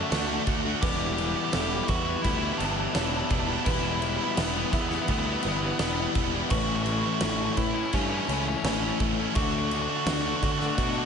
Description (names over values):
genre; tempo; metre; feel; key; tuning
post-rock; 84 BPM; 4/4; straight; E dorian; A4 = 440 Hz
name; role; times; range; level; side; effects
nasal lead guitar with a parked wah; melody; 0.0-11.1 s; A3 to G4; -32 LUFS; right 2 dB; overdrive, analog delay
shimmering ambient pad; sustained chords; 0.1-11.1 s; G3 to D6; -42 LUFS; equal; none
electric guitar through a small old amp; arpeggios; 0.0-11.1 s; E2 to F#4; -37 LUFS; left 5 dB; none
felt-muted upright piano; arpeggios; 0.0-11.1 s; A4 to E5; -42 LUFS; right 8 dB; none
cranked stack guitar; riff; 0.0-11.1 s; A2 to F#4; -32 LUFS; left 14 dB; overdrive
distorted electric guitar; riff; 0.0-11.1 s; A2 to F#4; -32 LUFS; right 15 dB; overdrive
fuzz picked electric bass; bass; 0.1-11.0 s; E1 to D3; -32 LUFS; right 1 dB; overdrive
huge arena drum kit; drums; 0.1-10.9 s; crash cymbal, kick drum, snare drum; -30 LUFS; equal; none
room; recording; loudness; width
light reverb, studio reverb; nothing above 11.0 kHz; -24 LUFS; side -6 dB against mid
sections
0.0-11.1 A section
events
none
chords
0.0 D; 0.8 Em; 6.5 A; 9.4 D